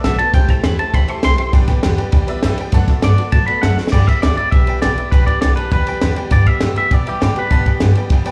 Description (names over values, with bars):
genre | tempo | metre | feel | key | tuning
rockabilly | 201 BPM | 4/4 | straight | G major | A4 = 440 Hz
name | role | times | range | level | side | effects
twangy electric guitar | melody | 0.0-7.8 s | G4 to C6 | -22 LUFS | equal | subtle chorus, plate reverb, slapback echo, analog delay
honky-tonk upright piano | accompaniment | 0.0-8.3 s | A4 to A5 | -30 LUFS | equal | plate reverb, slapback echo
picked steel-string acoustic guitar | accompaniment | 0.0-8.3 s | G2 to G4 | -26 LUFS | equal | plate reverb, slapback echo
upright bass | bass | 0.0-8.3 s | A1 to B2 | -19 LUFS | equal | none
compact cocktail drum kit | drums | 0.0-8.3 s | crash cymbal, kick drum, ride cymbal, snare drum | -19 LUFS | equal | none
room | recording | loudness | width
light reverb | live gig heard through the venue's PA, club ambience | -15 LUFS | mono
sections
0.0-3.9 A section; 3.9-8.3 B section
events
clean electric guitar solo 0.0-3.9; drum fill 3.8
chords
0.3 C6; 1.5 G6; 2.7 D6; 3.9 G6